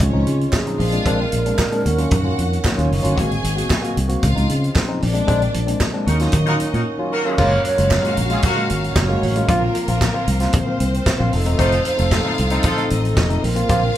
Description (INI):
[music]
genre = disco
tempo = 114 BPM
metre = 4/4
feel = straight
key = unclear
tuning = A4 = 440 Hz
[part]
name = mellow hollow alto flute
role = melody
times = 0.0-2.6, 7.1-14.0 s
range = F4 to Db5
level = -24 LUFS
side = right 3 dB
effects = none
[part]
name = warm symphonic violin section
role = second line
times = 0.0-14.0 s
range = Bb3 to Ab5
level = -28 LUFS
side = equal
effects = none
[part]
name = barky tine electric piano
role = accompaniment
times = 0.0-13.8 s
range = Ab2 to Gb4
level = -24 LUFS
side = left 2 dB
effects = none
[part]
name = percussive tonewheel organ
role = sustained chords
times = 0.0-14.0 s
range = Db3 to F5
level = -29 LUFS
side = right 1 dB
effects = overdrive, slow rotary speaker
[part]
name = fingered electric bass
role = bass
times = 0.0-13.9 s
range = Fb1 to Eb3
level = -20 LUFS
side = equal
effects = none
[part]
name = vintage drum kit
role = drums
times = 0.0-14.0 s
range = crash cymbal, hi-hat, kick drum, snare drum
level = -22 LUFS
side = equal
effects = none
[part]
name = group handclap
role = percussion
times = 0.5-13.3 s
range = none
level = -30 LUFS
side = right 3 dB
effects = none
[part]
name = clear horn section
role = stabs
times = 6.1-12.9 s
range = Bb3 to Db5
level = -26 LUFS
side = left 1 dB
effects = none
[sound]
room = moderate large studio reverb, RT60 1.3 s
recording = band playing live in one room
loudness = -16 LUFS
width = side -12 dB against mid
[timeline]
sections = 0.0-7.4 A section; 7.4-14.0 B section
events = band accent 5.3-7.4; break 6.9-7.4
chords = 0.0 Dbmaj7; 0.8 Bb7; 1.9 Ebm7; 3.2 Ab7; 4.2 Dbmaj7; 5.0 Bb7; 6.1 Ebm7; 7.4 Gbmaj7; 9.5 Bbsus2; 11.3 F7; 13.4 Bbsus2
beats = 0.00 0.53 | 1.06 1.59 2.11 2.64 | 3.17 3.70 4.22 4.75 | 5.28 5.80 6.33 6.86 | 7.38 7.91 8.44 8.96 | 9.49 10.01 10.54 11.06 | 11.59 12.12 12.64 13.17 | 13.70